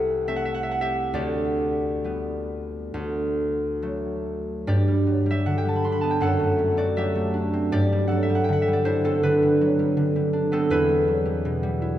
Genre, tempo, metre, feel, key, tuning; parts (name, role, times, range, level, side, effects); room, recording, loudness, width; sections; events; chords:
classical, solo harp piece; 65-84 BPM; 4/4; rubato; G major; A4 = 441 Hz
concert harp; solo; 0.0-12.0 s; C2 to C6; -21 LUFS; equal
wet church reverb, RT60 4.0 s; dark, warm production; -21 LUFS; side -12 dB against mid
0.0-4.7 A section; 4.7-12.0 B section
0.0 Am/C; 1.1 G/D; 2.9 D; 4.7 G; 6.2 D7/F#; 7.7 G; 10.7 Em